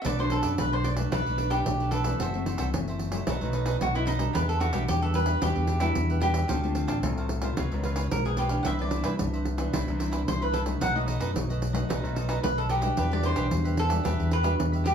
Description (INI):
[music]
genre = samba and choro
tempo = 111 BPM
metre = 4/4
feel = straight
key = unclear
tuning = A4 = 440 Hz
[part]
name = cavaquinho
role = melody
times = 0.0-14.9 s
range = D#4 to F#5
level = -29 LUFS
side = right 1 dB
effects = none
[part]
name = cavaquinho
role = accompaniment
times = 0.0-14.9 s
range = D4 to F5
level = -36 LUFS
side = right 4 dB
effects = none
[part]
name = nylon-string guitar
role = accompaniment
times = 0.0-14.9 s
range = F#2 to Bb4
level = -33 LUFS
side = left 4 dB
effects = none
[part]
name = fingered electric bass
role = bass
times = 0.0-14.9 s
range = F#1 to G2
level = -28 LUFS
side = equal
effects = none
[part]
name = pandeiro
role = percussion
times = 0.0-14.9 s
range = none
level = -33 LUFS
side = right 3 dB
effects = none
[sound]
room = light reverb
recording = small room ambience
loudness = -24 LUFS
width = side -8 dB against mid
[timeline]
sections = 0.0-14.9 A section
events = none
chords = 0.0 Bm7; 2.2 F#m7b5; 3.3 B7; 4.4 Em9; 6.5 Dm7; 7.6 C#6; 8.7 Cmaj9; 10.8 B7; 13.0 Em9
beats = | 0.05 0.59 1.12 1.66 | 2.20 2.74 3.27 3.81 | 4.35 4.89 5.43 5.97 | 6.50 7.04 7.58 8.12 | 8.66 9.20 9.74 10.28 | 10.82 11.36 11.90 12.44 | 12.98 13.52 14.05 14.60